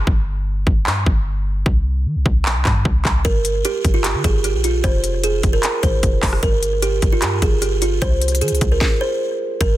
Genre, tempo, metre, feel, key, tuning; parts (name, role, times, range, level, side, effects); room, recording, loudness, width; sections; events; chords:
hip hop, trap; 151 BPM; 4/4; half-time; G phrygian; A4 = 440 Hz
clean 808-style bass; bass; 0.0-9.8 s; F1 to Eb3; -20 LUFS; equal
trap drum kit; drums; 0.1-9.7 s; handclaps, hi-hat, kick drum, rim click, snare drum; -18 LUFS; equal
buzzing kalimba; melody; 3.2-9.8 s; F4 to C5; -20 LUFS; right 3 dB; ping-pong delay
digital ambience; dense, heavily limited modern master; -16 LUFS; side -14 dB against mid
0.0-9.6 A section
break 0.0-3.2; stop 8.8-9.6
0.1 N.C.; 3.2 Gm; 4.8 Fm; 6.4 Gm; 8.0 N.C.